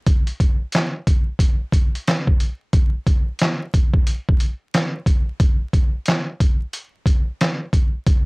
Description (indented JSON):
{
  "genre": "hip hop",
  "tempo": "90 BPM",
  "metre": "4/4",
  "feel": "swing 63% on 16ths",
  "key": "none",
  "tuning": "none",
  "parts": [
    { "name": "trip hop sampler-style drum kit", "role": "drums", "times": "0.1-8.3 s", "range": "handclaps, hi-hat, kick drum, snare drum", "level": "-16 LUFS", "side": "equal", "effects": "cassette tape" }
  ],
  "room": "light reverb",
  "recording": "home recording on cassette, vinyl crackle",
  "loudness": "-17 LUFS",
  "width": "side -32 dB against mid",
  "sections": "0.0-2.7 A section; 2.7-8.3 B section",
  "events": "none",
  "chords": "none",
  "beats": "| 0.07 0.73 1.40 2.07 | 2.73 3.40 4.07 4.73 | 5.40 6.07 6.73 7.40 | 8.07"
}